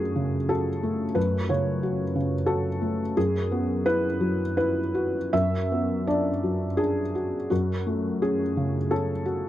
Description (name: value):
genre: neoclassical minimalist piano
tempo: 76-92 BPM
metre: 3/4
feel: rubato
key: F# minor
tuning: A4 = 440 Hz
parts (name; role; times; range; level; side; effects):
- felt-muted upright piano; solo; 0.0-9.5 s; F#2 to E5; -23 LUFS; equal; none
room: light reverb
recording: dry, close 1970s-style studio recording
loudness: -23 LUFS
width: side -13 dB against mid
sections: 0.0-9.5 A section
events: none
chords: 0.0 F#m; 3.2 Eadd9/F#; 5.3 Bm/F#; 7.5 F#m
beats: 0.50 | 1.16 1.82 2.48 | 3.16 3.84 4.55 | 5.32 6.05 6.78 | 7.50 8.21 8.90